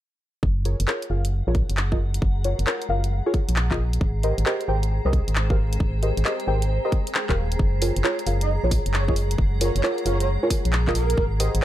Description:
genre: UK garage, two-step garage.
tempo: 134 BPM.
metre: 4/4.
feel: swing 66% on 16ths.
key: F# major.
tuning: A4 = 440 Hz.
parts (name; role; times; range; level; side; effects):
organ-like FM bass; bass; 0.4-11.6 s; D#1 to B#1; -23 LUFS; equal; sidechain pumping.
electronic kick drum; drums; 0.4-11.3 s; none; -23 LUFS; equal; none.
granular cloud pad; texture; 1.1-11.6 s; G#4 to A#5; -33 LUFS; left 1 dB; built-in reverb, sidechain pumping.
deep mellow chord stab; stabs; 0.7-11.6 s; E#4 to G5; -27 LUFS; equal; analog chorus, ping-pong delay.
garage drum kit; drums; 0.7-11.6 s; finger snaps, handclaps, hi-hat; -28 LUFS; equal; none.
breathy flute-like synth lead; melody; 8.4-11.2 s; A#4 to D#5; -30 LUFS; right 3 dB; ensemble chorus, ping-pong delay.
room: digital ambience.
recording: none.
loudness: -20 LUFS.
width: side -13 dB against mid.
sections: 0.4-11.6 A section.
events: filter sweep on synth stab 0.4-11.6.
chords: 0.4 F#maj9; 4.0 G#maj9; 7.6 F#maj9.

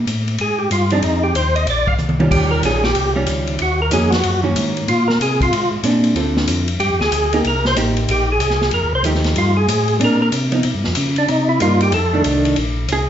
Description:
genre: soul jazz organ trio.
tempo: 187 BPM.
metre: 4/4.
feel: swing 64% on 8ths.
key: Bb mixolydian.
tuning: A4 = 441 Hz.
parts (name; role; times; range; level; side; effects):
mellow tonewheel organ; bass; 0.0-13.1 s; A1 to C#3; -19 LUFS; equal; chorus vibrato, slow rotary speaker.
swinging big-band drum kit; drums; 0.1-13.0 s; crash cymbal, hi-hat, kick drum, ride cymbal, snare drum, toms; -22 LUFS; left 1 dB; none.
percussive tonewheel organ; melody; 0.4-12.2 s; D4 to F5; -19 LUFS; equal; overdrive, chorus vibrato, stopped rotary speaker.
archtop guitar, miked and amplified; accompaniment; 0.9-13.1 s; D3 to A4; -20 LUFS; right 2 dB; none.
room: moderate recital hall reverb, RT60 1.4 s.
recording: recorded in a church or concert hall, nothing above 7.7 kHz, faint mains hum.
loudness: -14 LUFS.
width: side -10 dB against mid.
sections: 0.0-12.6 A section.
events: tonewheel organ solo 0.0-12.6; drum fill 2.0-2.3.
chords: 0.0 N.C.; 1.0 Fm7; 1.7 Eb9; 3.6 Ebm7; 4.9 Bb9; 6.2 Dm7; 6.8 G5; 7.4 Cm7; 8.7 F9; 10.0 Bb9; 10.6 G7#11; 11.3 Cm7; 11.9 F6; 12.6 Bb7sus2.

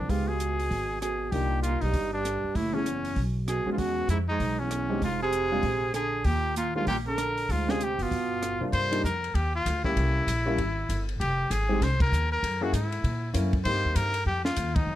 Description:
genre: jazz, small-group swing and bop.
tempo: 195 BPM.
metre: 4/4.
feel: swing 61% on 8ths.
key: unclear.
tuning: A4 = 440 Hz.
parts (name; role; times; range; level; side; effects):
bright trumpet; melody; 0.0-15.0 s; Db4 to C5; -30 LUFS; left 1 dB; none.
mellow baritone saxophone; second line; 0.0-8.6 s; E2 to D3; -32 LUFS; right 5 dB; none.
upright bass; bass; 0.0-15.0 s; F1 to A#2; -29 LUFS; equal; none.
warm baby grand piano; accompaniment; 0.1-14.1 s; C3 to A#4; -32 LUFS; left 1 dB; none.
compact cocktail drum kit; drums; 0.1-14.8 s; hi-hat, kick drum, ride cymbal, rim click, snare drum; -32 LUFS; equal; none.
room: light reverb.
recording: none.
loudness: -25 LUFS.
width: side -13 dB against mid.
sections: 0.0-8.7 A section; 8.7-15.0 B section.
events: band accent 12.0, 14.7.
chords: 0.1 Db7#11; 1.3 Cm9; 2.5 Gbm7; 3.2 B5; 3.8 E6; 5.0 Fm; 5.6 Bb7; 6.3 Ebmaj9; 7.5 Dm7b5; 8.1 G7; 8.7 Cm9; 10.0 C7b9; 11.2 Fm9; 12.4 F#9; 13.7 Abmaj9 (rootless).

